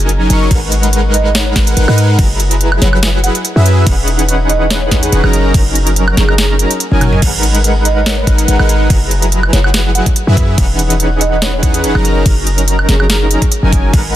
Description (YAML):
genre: future bass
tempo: 143 BPM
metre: 4/4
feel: swing 54% on 16ths, half-time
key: G# minor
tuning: A4 = 440 Hz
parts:
  - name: soft supersaw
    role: riff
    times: 0.0-14.2 s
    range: E3 to C#6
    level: -15 LUFS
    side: equal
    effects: sidechain pumping, dub echo
  - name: warm 808-style bass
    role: bass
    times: 0.0-14.2 s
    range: E1 to G#2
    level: -13 LUFS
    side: equal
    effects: sidechain pumping
  - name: trap drum kit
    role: drums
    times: 0.1-14.0 s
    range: crash cymbal, hi-hat, snare drum, toms, woodblock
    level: -17 LUFS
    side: right 1 dB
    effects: overdrive
  - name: electronic kick drum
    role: drums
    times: 0.5-14.0 s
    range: none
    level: -13 LUFS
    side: equal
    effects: overdrive
  - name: buzzing marimba with soft mallets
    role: melody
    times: 1.1-13.4 s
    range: G#4 to F#5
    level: -23 LUFS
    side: right 3 dB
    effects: sidechain pumping, dub echo
room: digital ambience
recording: dense, heavily limited modern master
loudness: -9 LUFS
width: side -13 dB against mid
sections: 0.0-7.2 A section; 7.2-14.2 A section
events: drop 0.0-7.2, 7.2-14.2; drum fill 6.9-7.2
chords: 0.0 D#m7/F#; 0.5 G#m9; 2.2 F#7sus4; 3.9 C#m11/E; 5.3 D#m7/F#; 7.2 G#m9; 8.9 F#7sus4; 10.6 C#m11/E; 12.0 D#m7/F#